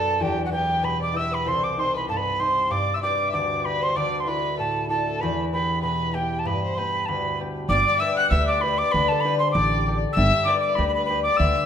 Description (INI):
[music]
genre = celtic folk, Celtic reel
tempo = 192 BPM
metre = 4/4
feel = swing 54% on 8ths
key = G major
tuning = A4 = 441 Hz
[part]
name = mellow mid whistle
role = melody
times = 0.0-11.7 s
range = F#5 to F#6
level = -23 LUFS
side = right 1 dB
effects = none
[part]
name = rich fiddle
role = second line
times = 0.0-11.7 s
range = F#4 to F#5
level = -30 LUFS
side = left 3 dB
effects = none
[part]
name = concert harp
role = accompaniment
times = 0.0-11.7 s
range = C2 to C5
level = -26 LUFS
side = left 2 dB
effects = none
[part]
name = upright bass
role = bass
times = 7.7-11.5 s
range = G1 to D2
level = -24 LUFS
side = right 1 dB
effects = none
[sound]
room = moderate recital hall reverb, RT60 1.7 s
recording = minimal, uncompressed stereo recording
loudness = -20 LUFS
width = side -8 dB against mid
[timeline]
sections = 0.0-7.7 A section; 7.7-11.7 B section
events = none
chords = 0.2 Em; 1.5 Cm; 2.7 G; 4.0 Dsus2; 5.2 Em; 6.5 Gadd9; 7.7 G; 8.9 Dsus4; 10.2 G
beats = | 0.20 0.52 0.83 1.15 | 1.46 1.77 2.08 2.40 | 2.71 3.02 3.34 3.65 | 3.96 4.27 4.59 4.90 | 5.21 5.52 5.83 6.15 | 6.46 6.77 7.08 7.39 | 7.70 8.01 8.32 8.63 | 8.94 9.25 9.56 9.86 | 10.17 10.48 10.79 11.09 | 11.40